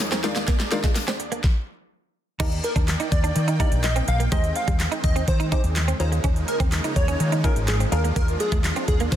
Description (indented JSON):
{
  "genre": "dance-pop",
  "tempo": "125 BPM",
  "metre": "4/4",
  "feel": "straight",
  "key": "Eb major",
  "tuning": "A4 = 444 Hz",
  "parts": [
    { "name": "wavetable chord stab", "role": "accompaniment", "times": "0.0-8.7 s", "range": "Eb3 to D5", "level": "-31 LUFS", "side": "left 3 dB", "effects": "sidechain pumping" },
    { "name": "supersaw chords", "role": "sustained chords", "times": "0.0-9.2 s", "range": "Eb2 to G5", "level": "-32 LUFS", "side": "right 1 dB", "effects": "sidechain pumping" },
    { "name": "pop drum kit", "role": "drums", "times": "0.0-9.2 s", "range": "crash cymbal, handclaps, hi-hat, kick drum, snare drum", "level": "-23 LUFS", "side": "equal", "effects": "none" },
    { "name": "tambourine", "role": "percussion", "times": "0.0-1.1 s", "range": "none", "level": "-34 LUFS", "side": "left 14 dB", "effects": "none" },
    { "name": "direct-recorded clean electric guitar", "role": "riff", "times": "0.1-9.2 s", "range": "G3 to Eb4", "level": "-31 LUFS", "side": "right 5 dB", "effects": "ensemble chorus" },
    { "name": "woody fretless electric bass", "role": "bass", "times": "2.4-9.2 s", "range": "Ab1 to Eb3", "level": "-23 LUFS", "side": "equal", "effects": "sidechain pumping" },
    { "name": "plucky unison lead", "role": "melody", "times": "2.6-9.2 s", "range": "Ab4 to F5", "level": "-28 LUFS", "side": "equal", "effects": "digital delay" }
  ],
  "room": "digital ambience",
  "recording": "dense, heavily limited modern master",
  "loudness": "-20 LUFS",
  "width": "side -11 dB against mid",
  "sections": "0.0-2.4 A section; 2.4-9.2 B section",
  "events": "build-up 0.0-2.4; drum fill 0.0-1.4; stop 1.4-2.4; drop 2.4-9.2",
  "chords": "0.2 Bb7/Eb; 2.4 Ebmaj7; 4.3 Abmaj7/Eb; 6.0 Db69/Eb; 7.9 Bb7/Eb"
}